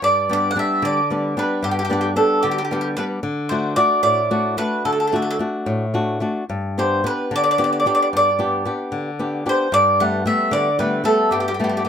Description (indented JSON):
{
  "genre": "italian folk, Italian serenade",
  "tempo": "74 BPM (dotted quarters)",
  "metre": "6/8",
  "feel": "rubato",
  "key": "G major",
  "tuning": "A4 = 438 Hz",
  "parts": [
    { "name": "bowl-back mandolin", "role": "melody", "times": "0.0-11.9 s", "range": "G4 to F#5", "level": "-18 LUFS", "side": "equal", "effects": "none" },
    { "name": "flamenco guitar", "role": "accompaniment", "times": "0.0-11.9 s", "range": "G2 to G4", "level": "-22 LUFS", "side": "left 2 dB", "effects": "none" }
  ],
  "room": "little or no reverb",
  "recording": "close, detailed microphones",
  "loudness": "-17 LUFS",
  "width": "side -8 dB against mid",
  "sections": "0.0-11.9 A section",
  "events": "none",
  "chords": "0.0 G; 3.2 D; 6.5 G; 9.7 Gadd9"
}